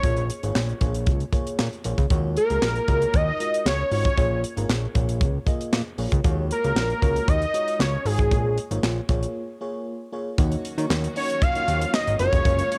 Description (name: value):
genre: early-eighties boogie funk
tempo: 116 BPM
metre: 4/4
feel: straight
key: Eb minor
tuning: A4 = 440 Hz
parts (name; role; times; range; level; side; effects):
- fat analog lead; melody; 0.0-12.8 s; Ab4 to F5; -26 LUFS; equal; cassette tape, analog delay
- FM electric piano with soft pad layer; accompaniment; 0.0-12.7 s; Ab3 to Eb5; -34 LUFS; equal; chorus
- fat analog bass; bass; 0.0-12.6 s; F1 to Eb3; -28 LUFS; equal; transformer saturation
- tight funk drum kit; drums; 0.0-12.8 s; handclaps, hi-hat, kick drum, snare drum; -26 LUFS; equal; cassette tape
- warm studio string section; sustained chords; 10.4-12.8 s; Db3 to F5; -39 LUFS; equal; none
room: small room ambience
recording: home recording on cassette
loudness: -23 LUFS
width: mono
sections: 0.0-10.4 A section; 10.4-12.8 B section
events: break 9.3-10.4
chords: 0.0 Bbm7; 2.1 Ebm11; 4.2 Bbm7; 6.2 Ebm11; 8.3 Bbm7; 10.4 Ebm7; 12.2 Gbmaj9